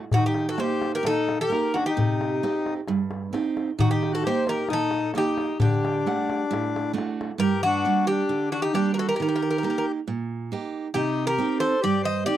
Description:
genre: greek folk, Greek bouzouki band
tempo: 133 BPM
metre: 4/4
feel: straight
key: G harmonic minor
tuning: A4 = 440 Hz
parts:
  - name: picked steel-string acoustic guitar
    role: accompaniment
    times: 0.0-12.4 s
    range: G2 to F#5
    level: -27 LUFS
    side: right 6 dB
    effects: none
  - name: darbuka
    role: percussion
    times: 0.0-7.3 s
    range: none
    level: -28 LUFS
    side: left 2 dB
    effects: none
  - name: Greek bouzouki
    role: melody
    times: 0.1-12.4 s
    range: F#4 to Eb5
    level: -26 LUFS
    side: equal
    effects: none
  - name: accordion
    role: second line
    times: 0.2-12.4 s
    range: D4 to C5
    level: -28 LUFS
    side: left 6 dB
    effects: none
room: little or no reverb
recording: dry, close 1970s-style studio recording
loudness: -22 LUFS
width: side -12 dB against mid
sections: 0.0-7.4 A section; 7.4-12.4 B section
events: speeding up 0.0-12.4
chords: 0.1 Eb; 2.0 Cm; 3.8 Eb; 5.6 D; 7.4 Gm; 9.2 Eb; 10.9 Cm

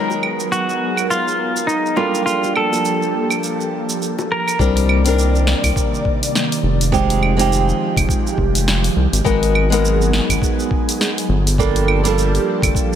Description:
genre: sunset chillout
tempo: 103 BPM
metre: 4/4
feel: swing 58% on 16ths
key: C minor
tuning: A4 = 440 Hz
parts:
  - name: semi-hollow electric guitar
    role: melody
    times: 0.0-4.6 s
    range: Eb4 to Bb4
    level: -20 LUFS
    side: equal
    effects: ping-pong delay
  - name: flamenco guitar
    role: accompaniment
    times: 0.0-13.0 s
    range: Gb3 to Bb4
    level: -21 LUFS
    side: moving between left 8 dB and right 6 dB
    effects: auto-pan, ping-pong delay
  - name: airy breathy pad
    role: sustained chords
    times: 0.0-13.0 s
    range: C3 to D5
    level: -23 LUFS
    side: right 1 dB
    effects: chorus, phaser, vintage 12-bit sampler grit
  - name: deep house drum kit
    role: drums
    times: 0.1-13.0 s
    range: claves, hi-hat, shaker, snare drum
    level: -22 LUFS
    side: right 2 dB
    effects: none
  - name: bongos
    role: percussion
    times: 0.1-4.3 s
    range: none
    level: -29 LUFS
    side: left 4 dB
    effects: none
  - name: round analog bass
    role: bass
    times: 4.6-12.7 s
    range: F1 to C2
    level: -17 LUFS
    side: equal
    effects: none
  - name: electronic kick drum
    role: drums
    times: 4.6-12.9 s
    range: none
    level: -20 LUFS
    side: equal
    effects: none
room: light reverb, digital ambience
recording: none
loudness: -15 LUFS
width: side -9 dB against mid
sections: 0.0-4.6 A section; 4.6-13.0 B section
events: none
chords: 0.0 Abm9; 2.0 Gm9; 4.6 Cm9; 6.9 Fm9; 9.3 Abm9; 11.3 Gm9

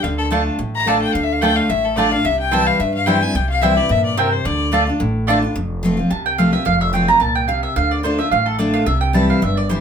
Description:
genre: bluegrass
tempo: 218 BPM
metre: 4/4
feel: swing 54% on 8ths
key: D minor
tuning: A4 = 440 Hz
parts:
  - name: clear fiddle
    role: second line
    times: 0.0-4.9 s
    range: A4 to Bb5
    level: -19 LUFS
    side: left 5 dB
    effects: none
  - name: picked steel-string acoustic guitar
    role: accompaniment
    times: 0.0-9.8 s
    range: F2 to F4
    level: -19 LUFS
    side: left 1 dB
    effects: none
  - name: upright bass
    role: bass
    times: 0.0-9.8 s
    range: F1 to G2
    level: -23 LUFS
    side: right 1 dB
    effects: none
  - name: mandolin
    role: stabs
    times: 0.3-9.8 s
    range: A3 to Bb5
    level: -18 LUFS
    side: right 4 dB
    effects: none
room: wet small room ambience, RT60 0.5 s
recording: band playing live in one room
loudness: -15 LUFS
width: side -7 dB against mid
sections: 0.0-5.6 A section; 5.6-9.8 A section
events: fiddle solo 0.0-5.6; mandolin solo 5.6-9.8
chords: 0.0 Dm; 2.2 C; 4.5 Dm; 5.6 F; 7.8 Dm; 8.9 C

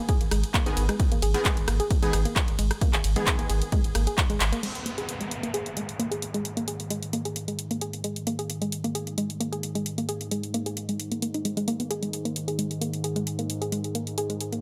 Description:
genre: driving peak-time techno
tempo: 132 BPM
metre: 4/4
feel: straight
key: G# minor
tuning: A4 = 440 Hz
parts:
  - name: woody wave-folded pluck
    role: riff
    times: 0.0-14.6 s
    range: G#3 to G#4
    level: -33 LUFS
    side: equal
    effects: chorus, sidechain pumping, digital delay
  - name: rave stab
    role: stabs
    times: 0.0-4.3 s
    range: D#3 to G#4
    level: -35 LUFS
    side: equal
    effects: chorus, built-in reverb, sidechain pumping, delay
  - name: electronic kick drum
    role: drums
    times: 0.1-4.3 s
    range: none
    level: -28 LUFS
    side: equal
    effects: none
  - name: techno drum kit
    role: drums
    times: 0.1-14.6 s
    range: crash cymbal, handclaps, hi-hat, ride cymbal, rim click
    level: -33 LUFS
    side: equal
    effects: sidechain pumping on hats, sidechain pumping on cymbals
  - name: warm sub bass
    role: bass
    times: 0.2-4.5 s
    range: G#1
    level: -29 LUFS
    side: equal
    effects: sidechain pumping, low-pass filter
  - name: analog drone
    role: drone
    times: 5.1-14.6 s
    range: G#2 to D#3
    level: -36 LUFS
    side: equal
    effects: chorus, sidechain pumping
  - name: downlifter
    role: sound effects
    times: 4.6-8.3 s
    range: none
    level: -40 LUFS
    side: equal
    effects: none
room: light reverb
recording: none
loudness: -27 LUFS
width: mono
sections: 0.0-4.6 A section; 4.6-14.6 B section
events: drop 0.0-4.6; drum fill 4.4; band accent 4.4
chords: 0.0 G#m; 4.6 G#5

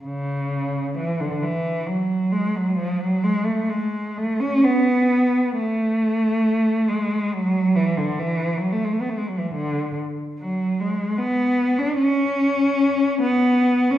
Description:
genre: classical, free, expressive piece for unaccompanied cello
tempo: 62-77 BPM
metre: 3/4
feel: rubato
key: F# minor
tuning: A4 = 445 Hz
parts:
  - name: rich cello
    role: solo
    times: 0.0-14.0 s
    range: C#3 to D4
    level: -19 LUFS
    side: equal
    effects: none
room: wet recital hall reverb, RT60 1.4 s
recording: heard from further back in the room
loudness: -19 LUFS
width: side -12 dB against mid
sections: 0.0-14.0 A section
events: none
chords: none

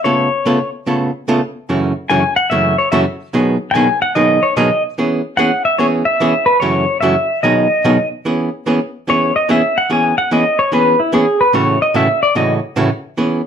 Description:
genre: country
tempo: 146 BPM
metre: 4/4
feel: swing 67% on 8ths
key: E major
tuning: A4 = 439 Hz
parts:
  - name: pedal steel guitar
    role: melody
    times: 0.0-12.5 s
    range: E4 to G#5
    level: -14 LUFS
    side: left 1 dB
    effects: plate reverb
  - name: archtop guitar, miked and amplified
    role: accompaniment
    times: 0.0-13.4 s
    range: F#2 to A4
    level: -15 LUFS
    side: right 1 dB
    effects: none
room: moderate studio reverb, RT60 0.5 s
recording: lossy compression artefacts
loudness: -12 LUFS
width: side -8 dB against mid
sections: 0.0-8.3 A section; 8.3-13.5 B section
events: pedal steel guitar solo 8.3-13.5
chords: 0.0 C#aug7; 1.7 F#m7; 3.3 B6; 5.0 E6; 6.6 F#m7; 7.4 B6; 8.3 E6; 11.5 A6

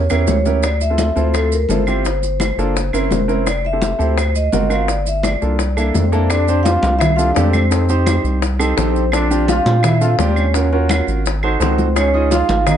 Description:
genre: Afro-Cuban jazz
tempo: 170 BPM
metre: 4/4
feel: straight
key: F major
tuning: A4 = 440 Hz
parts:
  - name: vibraphone with medium mallets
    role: melody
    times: 0.0-12.8 s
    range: A4 to E#5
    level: -21 LUFS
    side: equal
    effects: none
  - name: round analog bass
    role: bass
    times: 0.0-12.8 s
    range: F1 to Bb2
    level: -18 LUFS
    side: equal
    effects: none
  - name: clear concert grand piano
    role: accompaniment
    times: 0.1-12.6 s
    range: Bb3 to Eb5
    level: -21 LUFS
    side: right 3 dB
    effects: none
  - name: bongos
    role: percussion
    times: 0.1-12.8 s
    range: none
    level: -24 LUFS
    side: left 8 dB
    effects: none
  - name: claves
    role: percussion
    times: 0.1-12.8 s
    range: none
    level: -27 LUFS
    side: right 4 dB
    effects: none
  - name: congas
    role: percussion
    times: 0.1-12.8 s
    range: none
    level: -23 LUFS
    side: equal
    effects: none
  - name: maracas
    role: percussion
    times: 0.1-12.8 s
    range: none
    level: -31 LUFS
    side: right 6 dB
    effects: none
  - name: bright trombone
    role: second line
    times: 5.9-12.8 s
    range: C4 to F4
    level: -23 LUFS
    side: left 3 dB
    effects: none
room: light reverb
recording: nothing above 10.3 kHz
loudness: -14 LUFS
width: side -9 dB against mid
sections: 0.0-6.3 A section; 6.3-12.8 B section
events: drum fill 0.0-0.6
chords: 0.0 A7b9 (rootless); 0.6 Dm9; 2.1 Gm9; 2.8 Gb7#11; 3.5 Fmaj9; 4.2 D7alt; 4.9 Gm7; 5.6 C13; 6.3 F6; 7.7 F7; 9.1 Bbmaj7; 10.5 Ebm9; 11.3 Ab7b9; 12.0 Dbmaj9

